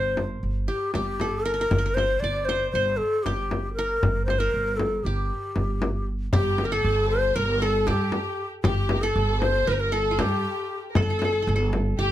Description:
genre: Turkish makam ensemble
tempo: 234 BPM (eighths)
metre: 9/8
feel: straight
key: G makam ussak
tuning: A4 = 440 Hz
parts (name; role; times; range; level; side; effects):
- breathy bright low ney; melody; 0.0-12.1 s; G4 to D5; -26 LUFS; left 2 dB; none
- qanun; second line; 0.0-12.1 s; F4 to D5; -31 LUFS; right 1 dB; slapback echo
- upright bass; bass; 0.0-12.1 s; G1 to G2; -27 LUFS; right 1 dB; none
- frame drum; percussion; 0.2-11.8 s; none; -27 LUFS; left 2 dB; none
- dark symphonic violin section; second line; 6.4-12.1 s; G4 to C5; -31 LUFS; right 1 dB; none
room: light reverb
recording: none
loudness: -22 LUFS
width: side -12 dB against mid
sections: 0.0-6.3 A section; 6.3-12.1 B section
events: none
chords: none

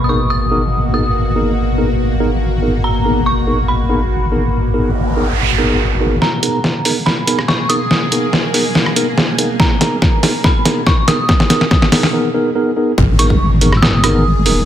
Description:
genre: deep dubstep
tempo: 142 BPM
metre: 4/4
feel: half-time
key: G# minor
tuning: A4 = 440 Hz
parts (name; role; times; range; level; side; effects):
- dark detuned synth bell; melody; 0.0-14.7 s; A#5 to E6; -21 LUFS; right 1 dB; chorus, dub echo
- bowed-like drone; sustained chords; 0.0-14.7 s; B2 to G#4; -21 LUFS; left 1 dB; built-in reverb, phaser
- deep soft wobble bass; bass; 0.0-14.7 s; D#1 to B1; -18 LUFS; equal; chorus, tube saturation, high-pass filter
- mellow tine electric piano; stabs; 0.1-14.6 s; B3 to A#4; -19 LUFS; right 1 dB; slow stereo tremolo, low-pass filter, dub echo
- noise sweep and impact; sound effects; 4.9-6.2, 13.0-14.7 s; none; -20 LUFS; right 1 dB; none
- trip hop sampler-style drum kit; drums; 6.2-14.5 s; hi-hat, rim click, snare drum; -15 LUFS; equal; overdrive, low-pass filter on snare, low-pass filter on hats
- electronic kick drum; drums; 9.6-13.4 s; none; -14 LUFS; equal; none
room: light reverb, digital ambience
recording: none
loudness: -12 LUFS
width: side -10 dB against mid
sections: 0.0-6.2 A section; 6.2-13.0 B section; 13.0-14.7 C section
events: noise sweep 4.9-6.2; build-up 6.2-13.0; drum fill 6.2-12.1; filter sweep on tine electric piano 6.2-13.0; break 12.1-13.0; drop 13.0-14.7; impact 13.0-14.7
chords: 0.0 G#madd9

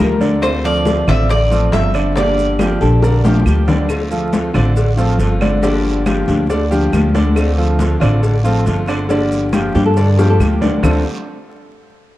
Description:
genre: latin, Cuban son and guajira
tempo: 138 BPM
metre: 4/4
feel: straight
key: D minor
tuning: A4 = 439 Hz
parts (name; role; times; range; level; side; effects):
- Cuban tres; melody; 0.0-3.4 s; Bb4 to E5; -19 LUFS; right 1 dB; none
- fingerpicked steel-string acoustic guitar; accompaniment; 0.0-11.0 s; D3 to G4; -21 LUFS; left 2 dB; none
- clear baby grand piano; arpeggios; 0.0-11.0 s; D3 to D5; -20 LUFS; right 2 dB; tape echo
- upright bass; bass; 0.0-11.0 s; G1 to G2; -16 LUFS; equal; none
- bongos and cowbell; percussion; 0.0-10.9 s; none; -24 LUFS; left 4 dB; none
- guiro; percussion; 0.0-10.9 s; none; -35 LUFS; right 6 dB; none
- congas; percussion; 0.2-10.9 s; none; -20 LUFS; left 2 dB; none
- maracas; percussion; 0.2-10.9 s; none; -41 LUFS; right 7 dB; none
- claves; percussion; 0.4-10.9 s; none; -32 LUFS; right 4 dB; none
- flamenco guitar; second line; 2.6-3.9, 9.8-11.0 s; F4 to Bb4; -22 LUFS; left 1 dB; none
room: moderate spring reverb, RT60 2.0 s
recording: dark, warm production, vinyl crackle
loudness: -12 LUFS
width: side -15 dB against mid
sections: 0.0-3.9 A section; 3.9-10.8 B section; 10.8-12.2 C section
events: drum fill 3.0-3.9, 10.2-10.8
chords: 0.4 Dm7; 2.2 Gm7; 3.9 Dm7; 5.6 Gm7; 7.4 Dm7; 9.1 Gm7; 10.8 Dm7

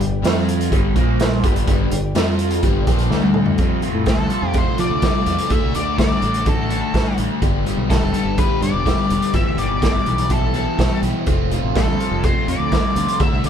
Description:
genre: classic rock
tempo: 125 BPM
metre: 4/4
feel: straight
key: unclear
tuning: A4 = 442 Hz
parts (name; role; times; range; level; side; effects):
- ensemble organ-string; sustained chords; 0.0-3.6 s; A3 to F5; -32 LUFS; right 1 dB; ensemble chorus
- crunchy overdriven guitar; riff; 0.0-13.5 s; E2 to F4; -25 LUFS; left 9 dB; spring reverb
- overdriven electric guitar; riff; 0.0-13.5 s; F2 to G4; -25 LUFS; right 6 dB; phaser
- modern bright fingered electric bass; bass; 0.0-13.5 s; E1 to F3; -23 LUFS; equal; none
- raw garage drum kit; drums; 0.0-13.5 s; hi-hat, kick drum, snare drum, toms; -19 LUFS; equal; none
- octave-fuzz lead guitar; melody; 4.1-13.5 s; A4 to E5; -24 LUFS; left 3 dB; distortion
room: light reverb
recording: band playing live in one room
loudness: -16 LUFS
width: side -8 dB against mid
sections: 0.0-3.6 A section; 3.6-13.5 B section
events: drum fill 3.1-3.6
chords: 0.2 F5; 0.7 G5; 1.0 Bb5; 1.4 G; 2.2 F5; 2.6 G; 3.1 D5; 3.6 F; 5.5 D; 7.4 G; 9.3 Em/G; 11.3 F

